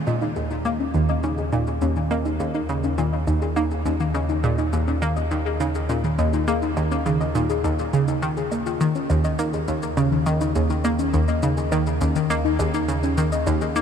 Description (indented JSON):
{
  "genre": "ambient, sequencer-driven space music",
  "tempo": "103 BPM",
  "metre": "4/4",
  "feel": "straight",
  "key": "unclear",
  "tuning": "A4 = 440 Hz",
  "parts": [
    { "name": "soft round pluck", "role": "arpeggios", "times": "0.0-13.8 s", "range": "Eb3 to Eb5", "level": "-25 LUFS", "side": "moving between left 5 dB and right 2 dB", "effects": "chorus, auto-pan, ping-pong delay" },
    { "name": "warm sub bass", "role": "bass", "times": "0.0-13.8 s", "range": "Eb2", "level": "-28 LUFS", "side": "right 1 dB", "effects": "none" },
    { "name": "analog pluck", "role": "riff", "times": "0.1-13.8 s", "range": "Eb2 to Bb3", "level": "-23 LUFS", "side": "right 1 dB", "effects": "chorus, ping-pong delay" },
    { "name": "shaker and woodblock", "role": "percussion", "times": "0.1-13.8 s", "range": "none", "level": "-39 LUFS", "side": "right 1 dB", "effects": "ping-pong delay" }
  ],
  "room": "moderate huge ambient reverb, RT60 8.4 s",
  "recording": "in a vast, echoing space, cassette tape",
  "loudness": "-20 LUFS",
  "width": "side -8 dB against mid",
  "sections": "0.0-13.8 A section",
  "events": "fade-in on drum 0.0-13.8",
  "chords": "0.0 Eb5"
}